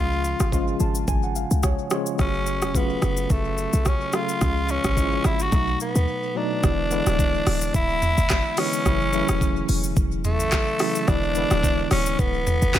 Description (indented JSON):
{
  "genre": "afrobeats",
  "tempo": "108 BPM",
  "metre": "4/4",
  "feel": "swing 55% on 16ths",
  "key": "F# harmonic minor",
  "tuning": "A4 = 440 Hz",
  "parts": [
    { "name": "growling tenor saxophone", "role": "melody", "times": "0.0-12.8 s", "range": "A3 to F#4", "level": "-25 LUFS", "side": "equal", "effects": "tape echo" },
    { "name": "tine electric piano", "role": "accompaniment", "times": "0.0-12.8 s", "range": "B2 to A5", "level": "-27 LUFS", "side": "equal", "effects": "overdrive, medium stereo tremolo" },
    { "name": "short 808-style bass", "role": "bass", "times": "0.0-12.8 s", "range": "D1 to D#2", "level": "-25 LUFS", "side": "equal", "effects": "none" },
    { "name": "afro-pop drum kit", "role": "drums", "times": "0.2-12.8 s", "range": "handclaps, hi-hat, kick drum, rim click, shaker, toms", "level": "-24 LUFS", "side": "equal", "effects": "none" }
  ],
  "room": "little or no reverb",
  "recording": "echo-heavy mix",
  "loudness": "-20 LUFS",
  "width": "side -12 dB against mid",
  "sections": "0.0-6.6 A section; 6.6-12.8 B section",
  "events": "tine electric piano fill 0.5-2.2; break 6.1-6.6",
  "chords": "0.0 C#; 2.2 F#m; 4.4 C#; 5.5 B7; 6.6 E7; 8.9 F#m7; 11.1 E7",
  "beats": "0.53 1.08 1.64 | 2.19 2.75 3.30 3.86 | 4.41 4.97 5.53 6.08 | 6.64 7.19 7.75 8.30 | 8.86 9.41 9.97 10.53 | 11.08 11.64 12.19 12.75"
}